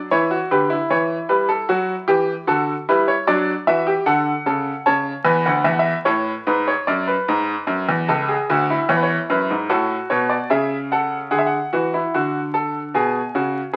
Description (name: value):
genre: classical, baroque-style 3-part fugue for grand piano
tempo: 75 BPM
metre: 4/4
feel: straight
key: D major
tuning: A4 = 442 Hz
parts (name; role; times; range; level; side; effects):
- bright grand piano; solo; 0.0-13.8 s; C#2 to A5; -20 LUFS; equal; none
room: moderate stone room reverb, RT60 1.1 s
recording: very old 78 rpm record, vinyl crackle, nothing above 10.4 kHz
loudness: -20 LUFS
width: mono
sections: 0.0-11.3 A section; 11.3-13.8 B section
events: none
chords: 0.1 D; 4.9 A; 6.5 G#dim; 8.1 A/C#; 9.7 A; 11.3 D; 12.9 G#m/B